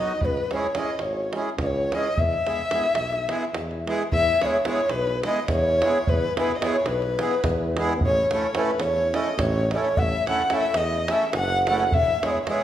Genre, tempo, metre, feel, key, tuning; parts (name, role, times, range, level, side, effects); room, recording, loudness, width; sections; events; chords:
balkan folk, Balkan wedding band; 215 BPM (eighths); 7/8; straight; E major; A4 = 440 Hz
breathy mellow low ney; melody; 0.0-12.6 s; B4 to G#5; -25 LUFS; left 1 dB
dark violin; second line; 0.0-12.6 s; B4 to F#5; -29 LUFS; left 2 dB
accordion; accompaniment; 0.0-12.6 s; F#3 to A4; -29 LUFS; right 2 dB
warm tuba; bass; 0.2-12.1 s; E1 to E2; -29 LUFS; equal
davul; percussion; 0.2-12.6 s; -29 LUFS; right 2 dB
wet recital hall reverb, RT60 1.4 s; recorded in a church or concert hall; -21 LUFS; side -11 dB against mid
0.0-4.1 A section; 4.1-12.6 B section
0.2 C#m; 2.2 E; 8.0 A; 11.9 E